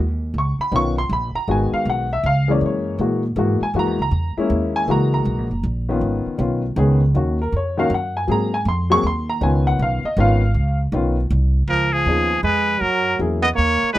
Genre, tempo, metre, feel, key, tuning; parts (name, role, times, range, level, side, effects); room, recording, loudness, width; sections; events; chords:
jazz, small-group swing and bop; 159 BPM; 3/4; swing 66% on 8ths; Db mixolydian; A4 = 440 Hz
upright bass; bass; 0.0-14.0 s; Gb1 to Bb2; -20 LUFS; right 1 dB
dark baby grand piano; accompaniment; 0.4-14.0 s; Eb3 to Db6; -20 LUFS; left 2 dB
trumpet with straight mute; melody; 11.7-14.0 s; Ab4 to Eb5; -18 LUFS; left 1 dB
bright trombone; second line; 11.7-14.0 s; F3 to Cb4; -23 LUFS; right 6 dB
little or no reverb; close, detailed microphones; -17 LUFS; side -15 dB against mid
0.0-11.7 A section; 11.7-14.0 B section
0.3 Db9; 1.5 Abm7; 2.2 Db; 2.6 Gb9; 6.0 Db9; 7.1 Ebm7; 8.3 Ab9; 9.4 Db9; 12.8 Gb9